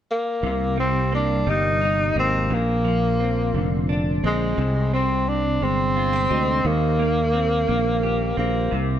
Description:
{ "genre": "pop", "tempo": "58 BPM (dotted quarters)", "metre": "6/8", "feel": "straight", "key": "C minor", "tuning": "A4 = 440 Hz", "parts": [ { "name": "mellow tenor saxophone", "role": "melody", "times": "0.1-8.8 s", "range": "Ab3 to Eb4", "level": "-23 LUFS", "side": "equal", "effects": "ping-pong delay" }, { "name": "direct-recorded clean electric guitar", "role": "accompaniment", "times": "0.4-9.0 s", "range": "Bb2 to G4", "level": "-25 LUFS", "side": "right 1 dB", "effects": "double-tracked left and right" }, { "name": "sustaining fretless electric bass", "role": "bass", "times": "0.4-9.0 s", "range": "F1 to Eb2", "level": "-24 LUFS", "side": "equal", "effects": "analog chorus" } ], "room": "small room ambience", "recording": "none", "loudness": "-19 LUFS", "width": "side -10 dB against mid", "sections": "0.4-9.0 A section", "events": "none", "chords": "0.4 Cm7; 2.5 Bbadd9; 4.6 Abmaj7/C; 6.7 Eb6" }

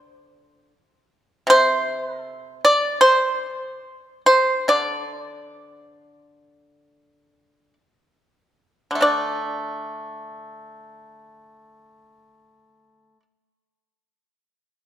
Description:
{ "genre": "chinese traditional, Chinese solo plucked strings", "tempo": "46-79 BPM", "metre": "4/4", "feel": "rubato", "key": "unclear", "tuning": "A4 = 439 Hz", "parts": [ { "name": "pipa", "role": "solo", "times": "0.0-13.2 s", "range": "C3 to D5", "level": "-17 LUFS", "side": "equal", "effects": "none" } ], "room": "moderate scoring stage reverb, RT60 1.9 s", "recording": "minimal, uncompressed stereo recording", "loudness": "-17 LUFS", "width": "side -11 dB against mid", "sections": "0.0-9.0 A section; 9.0-13.8 B section", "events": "slowing down 1.5-9.0", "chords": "none" }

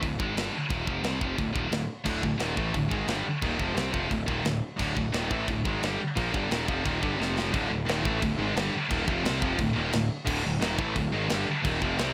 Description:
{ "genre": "heavy metal", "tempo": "175 BPM", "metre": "4/4", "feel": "straight", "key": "unclear", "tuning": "A4 = 440 Hz", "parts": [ { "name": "scooped high-gain guitar", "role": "riff", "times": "0.0-12.1 s", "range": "D2 to C4", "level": "-32 LUFS", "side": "equal", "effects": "distortion" }, { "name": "fuzz picked electric bass", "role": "bass", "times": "0.0-12.1 s", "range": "D1 to C2", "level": "-36 LUFS", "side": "equal", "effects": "overdrive" }, { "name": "tight metal drum kit", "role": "drums", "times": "0.0-12.1 s", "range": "china cymbal, crash cymbal, kick drum, snare drum", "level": "-35 LUFS", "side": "equal", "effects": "none" }, { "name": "high-gain distorted guitar", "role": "riff", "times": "2.0-12.1 s", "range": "D2 to C4", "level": "-34 LUFS", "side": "equal", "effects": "distortion" } ], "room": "small room ambience", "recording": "none", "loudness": "-28 LUFS", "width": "mono", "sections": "0.0-7.5 A section; 7.5-12.1 B section", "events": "drum fill 7.2-7.5", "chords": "0.0 Dm; 7.2 F5; 7.5 Dm" }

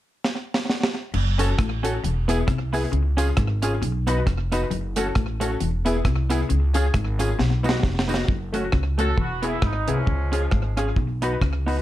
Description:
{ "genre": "ska", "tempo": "134 BPM", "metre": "4/4", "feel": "swing 57% on 8ths", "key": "F# dorian", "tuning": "A4 = 440 Hz", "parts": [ { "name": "deep reggae drum kit", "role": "drums", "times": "0.2-11.8 s", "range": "crash cymbal, hi-hat, kick drum, rim click, snare drum", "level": "-24 LUFS", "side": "equal", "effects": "slapback echo" }, { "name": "clean electric guitar", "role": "riff", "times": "1.1-11.6 s", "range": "E2 to C#3", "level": "-32 LUFS", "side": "left 6 dB", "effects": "slapback echo" }, { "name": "upright bass", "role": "bass", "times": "1.1-11.8 s", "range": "E1 to C#2", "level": "-24 LUFS", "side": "equal", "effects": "none" }, { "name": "semi-hollow electric guitar", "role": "accompaniment", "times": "1.4-11.8 s", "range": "A3 to A4", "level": "-29 LUFS", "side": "right 4 dB", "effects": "slapback echo" }, { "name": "honky-tonk upright piano", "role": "stabs", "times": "1.4-11.8 s", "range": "A3 to B4", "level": "-29 LUFS", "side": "left 4 dB", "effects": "slapback echo" }, { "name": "tambourine", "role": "percussion", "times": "1.4-8.2 s", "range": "none", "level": "-41 LUFS", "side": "right 8 dB", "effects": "none" }, { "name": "warm horn section", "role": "melody", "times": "9.0-10.7 s", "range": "E#3 to A4", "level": "-29 LUFS", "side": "right 1 dB", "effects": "slapback echo" } ], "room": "light reverb", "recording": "none", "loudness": "-20 LUFS", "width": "side -14 dB against mid", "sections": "0.0-1.1 A section; 1.1-8.3 B section; 8.3-11.8 C section", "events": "drum fill 0.2-1.1, 7.4-8.3", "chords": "0.0 N.C.; 1.1 F#m; 2.0 E; 2.9 C#; 3.8 B; 4.7 F#m; 5.6 E; 6.5 C#; 7.4 B; 8.3 F#m; 9.2 E; 10.1 C#; 11.0 B" }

